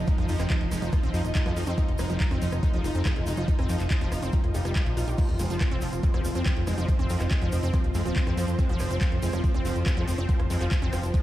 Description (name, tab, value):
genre	psychedelic trance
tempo	141 BPM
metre	4/4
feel	straight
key	unclear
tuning	A4 = 440 Hz
part	formant-sweep wobble bass	second line	0.0-11.1 s	F3 to Eb4	-45 LUFS	left 2 dB	none
part	pulsing gated texture	sustained chords	0.0-11.2 s	F3 to Eb4	-34 LUFS	right 1 dB	chorus, built-in reverb, sidechain pumping
part	fat analog bass	bass	0.0-11.1 s	Eb1 to F2	-28 LUFS	equal	none
part	dark chamber string section	texture	0.0-11.2 s	F4 to Eb5	-36 LUFS	equal	sidechain pumping
part	wide unison pluck	riff	0.1-11.2 s	F3 to G4	-35 LUFS	right 1 dB	auto-pan, sidechain pumping, dub echo
part	electronic kick drum	drums	0.1-11.2 s	none	-24 LUFS	equal	overdrive
part	garage drum kit	drums	0.1-11.2 s	crash cymbal, handclaps, hi-hat, rim click	-37 LUFS	equal	overdrive
part	tube shaker	percussion	0.1-11.2 s	none	-45 LUFS	right 3 dB	none
part	swell	sound effects	4.5-5.2 s	none	-44 LUFS	left 2 dB	none
room	little or no reverb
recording	played on a big sound system in a bare room, large studio reverb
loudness	-23 LUFS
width	side -14 dB against mid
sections	0.0-11.2 A section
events	none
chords	0.0 F5